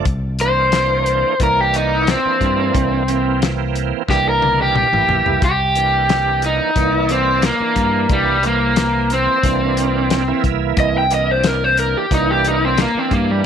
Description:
straight-eighth soul blues; 90 BPM; 4/4; straight; C mixolydian; A4 = 440 Hz
bright tonewheel organ; accompaniment; 0.0-13.5 s; E3 to D5; -23 LUFS; right 15 dB; slow rotary speaker, overdrive, chorus vibrato
fingered electric bass; bass; 0.1-13.4 s; A1 to G2; -21 LUFS; left 1 dB
warm soul drum kit; drums; 0.1-13.3 s; hi-hat, kick drum, snare drum, toms; -21 LUFS; left 3 dB
raw garage guitar; melody; 0.4-13.5 s; G3 to G5; -16 LUFS; left 1 dB; overdrive
light reverb, studio ambience; 1960s-style stereo; -14 LUFS; side -8 dB against mid
0.0-5.4 A section; 5.4-13.5 B section
drum fill 4.1-5.4; overdriven electric guitar solo 5.4-13.5
0.1 C9

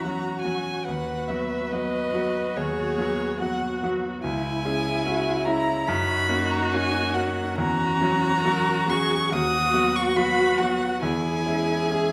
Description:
classical, slow romantic movement for piano quartet; 71 BPM; 4/4; rubato; B major; A4 = 440 Hz
dark violin; melody; 0.0-12.1 s; C#5 to D#6; -29 LUFS; equal
dark cello; second line; 0.0-12.1 s; C#4 to B4; -31 LUFS; equal
clear concert grand piano; accompaniment; 0.0-12.1 s; C#2 to F#4; -29 LUFS; equal
dark viola; accompaniment; 0.0-12.1 s; E4 to G#4; -32 LUFS; equal
wet recital hall reverb, RT60 1.7 s; -24 LUFS; mono
0.0-12.1 A section
0.0 F#7/E; 0.9 B/D#; 4.2 C#m; 5.9 F#; 7.6 F#7/E; 9.3 B/D#; 11.0 C#m/E

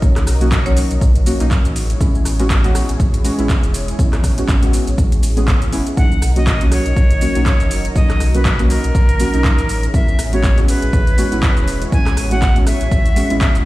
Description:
deep house; 121 BPM; 4/4; swing 57% on 16ths; A4 = 440 Hz
warm analog pad; sustained chords; 0.0-13.7 s; F#3 to D#5; -28 LUFS; equal; chorus, sidechain pumping
deep mellow chord stab; stabs; 0.0-13.5 s; F#3 to G#4; -22 LUFS; equal; chorus, sidechain pumping, dub echo
sub bass with octave; bass; 0.0-13.7 s; E1 to B1; -18 LUFS; equal; sidechain pumping
deep house drum kit; drums; 0.0-13.6 s; handclaps, hi-hat, rim click, shaker; -25 LUFS; equal; overdrive, small room reverb
electronic kick drum; drums; 0.0-13.5 s; -15 LUFS; equal; overdrive, small room reverb
marimba with medium hard mallets; melody; 0.7-1.0 s; C#5; -29 LUFS; equal; digital delay
bright reedy silver concert flute; melody; 6.0-13.6 s; A#4 to G#5; -23 LUFS; equal; tape echo
digital ambience; played on a big sound system in a bare room, stone room reverb; -13 LUFS; side -18 dB against mid
0.0-13.7 A section
0.0 Bmaj7; 1.8 Amaj7; 6.0 Bmaj7; 9.7 Amaj7

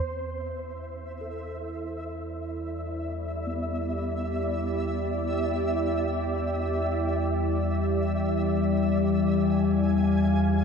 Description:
dark ambient drone; free time; A4 = 439 Hz
deep rumbling drone; drone; 0.0-10.6 s; E2 to G3; -27 LUFS; left 2 dB; built-in reverb
flickering grainy texture; texture; 0.0-10.6 s; E5 to G#5; -35 LUFS; equal; built-in reverb
deep dark ambient pad; sustained chords; 1.6-10.6 s; E4 to F5; -30 LUFS; right 2 dB; chorus, built-in reverb
gamelan-type bronze metallophone; arpeggios; 1.2-9.4 s; B3 to A4; -39 LUFS; left 1 dB; ping-pong delay
wet huge ambient reverb, RT60 8.3 s; dark, warm production; -25 LUFS; side -6 dB against mid
0.1-10.6 A section
fade-in on synth drone 0.1-10.6; fade-in on ambient pad 0.1-10.6; fade-in on synth texture 0.1-10.6; fade-in on bronze metallophone 0.1-10.6
0.1 Em; 9.1 G#

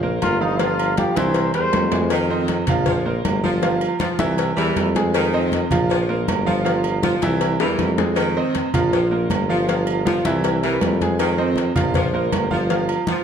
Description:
latin, salsa; 158 BPM; 4/4; straight; A4 = 440 Hz
bright baby grand piano; accompaniment; 0.0-13.2 s; E3 to Ab5; -22 LUFS; right 3 dB
clear tuba; bass; 0.0-12.9 s; G1 to F2; -23 LUFS; left 1 dB
congas; percussion; 0.0-13.2 s; -26 LUFS; left 2 dB
bright trombone; melody; 0.2-2.1 s; Eb4 to C5; -23 LUFS; left 3 dB
cowbell and bongos; percussion; 0.2-13.2 s; -28 LUFS; left 7 dB
timbales and agogo bells; percussion; 0.2-13.2 s; -28 LUFS; right 7 dB
bright saxophone section; second line; 2.1-13.2 s; Eb3 to F3; -27 LUFS; left 1 dB
wet large studio reverb, RT60 1.3 s; dark, warm production; -17 LUFS; side -8 dB against mid
0.0-2.1 A section; 2.1-13.2 B section
trombone solo 0.0-2.1; drum fill 1.2-2.1, 7.6-8.2
0.0 Bbsus2; 0.6 Cadd11/G; 1.4 C7; 2.1 F5; 2.9 Bbsus2; 3.6 Cadd11; 4.4 C7; 5.1 Fm7; 5.9 Bbsus2; 6.7 Cadd11/G; 7.4 C7; 8.2 Fm7; 8.9 Bbsus2; 9.7 Cadd11/G; 10.4 C7; 11.2 Fm7; 12.0 Bbsus2; 12.7 Csus4 (rootless)

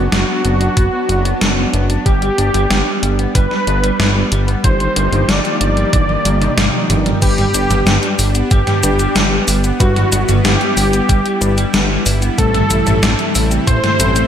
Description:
synthwave; 93 BPM; 4/4; straight; G major; A4 = 441 Hz
wide unison lead; melody; 0.0-14.3 s; F#4 to D5; -19 LUFS; equal; ping-pong delay
soft supersaw; sustained chords; 0.0-14.3 s; C3 to G4; -22 LUFS; equal; sidechain pumping
electric guitar through a small old amp; riff; 0.0-14.2 s; Eb3 to F#4; -25 LUFS; left 1 dB; lush chorus, ping-pong delay
fat analog bass; bass; 0.0-14.2 s; F#1 to A1; -17 LUFS; equal
gated 80s digital drum machine; drums; 0.1-14.3 s; cabasa, crash cymbal, hi-hat, snare drum, toms; -17 LUFS; equal; gated reverb, gated reverb snare
electronic kick drum; drums; 0.8-13.8 s; -14 LUFS; equal
mellow FM electric piano; stabs; 7.2-14.3 s; G3 to B4; -24 LUFS; left 3 dB; chorus
light reverb; -12 LUFS; side -9 dB against mid
0.0-7.2 A section; 7.2-14.3 B section
drum fill 5.9-7.2
0.0 Bm/F#; 2.1 G; 4.6 Ebadd9/G; 7.2 G; 12.4 Am7

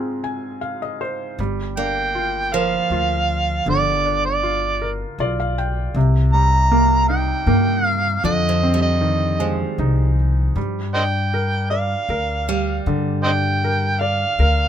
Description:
folk; 78 BPM; 3/4; straight; A4 = 440 Hz
felt-muted upright piano; accompaniment; 0.0-14.7 s; Ab2 to Ab5; -24 LUFS; equal
upright bass; bass; 1.4-14.7 s; G1 to G2; -21 LUFS; left 1 dB
overdriven harmonica; melody; 1.8-14.7 s; C5 to Bb5; -20 LUFS; right 2 dB
picked steel-string acoustic guitar; arpeggios; 1.8-3.9, 8.2-13.9 s; D3 to Bb3; -26 LUFS; right 6 dB
light reverb; minimal, uncompressed stereo recording; -17 LUFS; side -9 dB against mid
0.0-1.4 A section; 1.4-14.7 B section
0.0 Ab6; 1.4 Gm7; 6.0 Cm7; 8.2 Fm7; 10.6 Gm7

